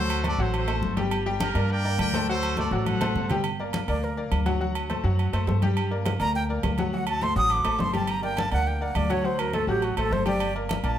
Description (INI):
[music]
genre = latin, salsa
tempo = 207 BPM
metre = 4/4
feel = straight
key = G harmonic minor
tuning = A4 = 440 Hz
[part]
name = bright trumpet section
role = melody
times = 0.0-3.4 s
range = D4 to G5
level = -30 LUFS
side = right 1 dB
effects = none
[part]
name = bright concert grand piano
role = accompaniment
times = 0.0-11.0 s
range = F#3 to G5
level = -30 LUFS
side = left 3 dB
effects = none
[part]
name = upright bass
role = bass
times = 0.0-11.0 s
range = G1 to G2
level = -27 LUFS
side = equal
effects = none
[part]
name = agogo bells and timbales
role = percussion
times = 0.1-11.0 s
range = none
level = -33 LUFS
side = right 3 dB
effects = none
[part]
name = congas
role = percussion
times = 0.1-10.8 s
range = none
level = -31 LUFS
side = left 2 dB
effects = none
[part]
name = breathy bright concert flute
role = melody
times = 3.9-4.2, 6.2-11.0 s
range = F#4 to Eb6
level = -27 LUFS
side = right 2 dB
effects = none
[sound]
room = moderate large studio reverb, RT60 1.2 s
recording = none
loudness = -23 LUFS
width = side -10 dB against mid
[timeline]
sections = 0.0-3.4 A section; 3.4-11.0 B section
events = drum fill 2.9-3.4; flute solo 3.4-11.0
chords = 0.0 D7; 1.1 Gmadd9; 2.3 D7; 3.4 Gm; 4.6 D7; 5.8 Gm; 6.9 D7; 8.1 Gm; 9.2 D7; 10.4 Gmadd9